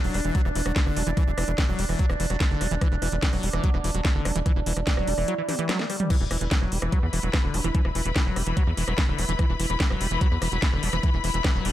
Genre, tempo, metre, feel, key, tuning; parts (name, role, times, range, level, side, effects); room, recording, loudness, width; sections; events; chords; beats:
psychedelic trance; 146 BPM; 4/4; straight; E minor; A4 = 440 Hz
overtone-sweeping drone; sustained chords; 0.0-6.1 s; D4; -32 LUFS; right 4 dB; chorus, built-in reverb, sidechain pumping
liquid acid bass; riff; 0.0-11.7 s; D3 to B3; -31 LUFS; equal; chorus, auto-pan, sidechain pumping, ping-pong delay
tight sequencer bass; bass; 0.0-11.7 s; E1 to E2; -27 LUFS; equal
garage drum kit; drums; 0.0-11.7 s; crash cymbal, hi-hat, rim click, snare drum, toms; -30 LUFS; equal
resonant blip pluck; second line; 0.3-11.7 s; B3 to G4; -41 LUFS; right 3 dB; chorus, sidechain pumping, high-pass filter, digital delay
electronic kick drum; drums; 0.3-11.5 s; -23 LUFS; equal
rich studio string section; texture; 6.1-11.7 s; E4 to B5; -31 LUFS; left 5 dB; sidechain pumping
digital ambience; -22 LUFS; side -13 dB against mid
0.0-6.1 A section; 6.1-11.7 A section
drop 0.0-6.1, 6.1-11.7; drum fill 5.5-6.1
0.0 E5
0.35 0.76 | 1.17 1.58 1.99 2.40 | 2.81 3.23 3.64 4.05 | 4.46 4.87 5.28 5.69 | 6.10 6.51 6.92 7.33 | 7.75 8.16 8.57 8.98 | 9.39 9.80 10.21 10.62 | 11.03 11.45